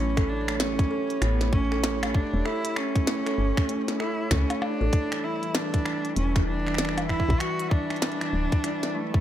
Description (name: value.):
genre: IDM.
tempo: 97 BPM.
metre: 4/4.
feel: swing 62% on 16ths.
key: E dorian.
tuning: A4 = 440 Hz.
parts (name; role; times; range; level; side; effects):
warm cello; melody; 0.0-9.2 s; A3 to F#4; -29 LUFS; right 1 dB; tape echo.
warbly tape-like pad; sustained chords; 0.0-9.2 s; E3 to E5; -34 LUFS; right 1 dB; chorus, built-in reverb, vintage 12-bit sampler grit.
kalimba; arpeggios; 0.0-9.2 s; E3 to A4; -33 LUFS; left 1 dB; tape echo.
woody FM bass; bass; 0.0-8.5 s; D1 to C#2; -27 LUFS; equal; none.
electronic kick drum; drums; 0.2-9.2 s; none; -24 LUFS; equal; none.
glitchy drum kit; drums; 0.2-8.9 s; finger snaps, hi-hat, percussion blips, snare drum; -31 LUFS; equal; none.
room: light reverb.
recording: none.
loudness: -23 LUFS.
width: side -11 dB against mid.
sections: 0.0-9.2 A section.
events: none.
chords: 0.0 A7; 4.9 Em7.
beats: 0.60 1.22 1.83 | 2.45 3.07 3.69 4.31 | 4.93 5.55 6.17 6.78 | 7.40 8.02 8.64.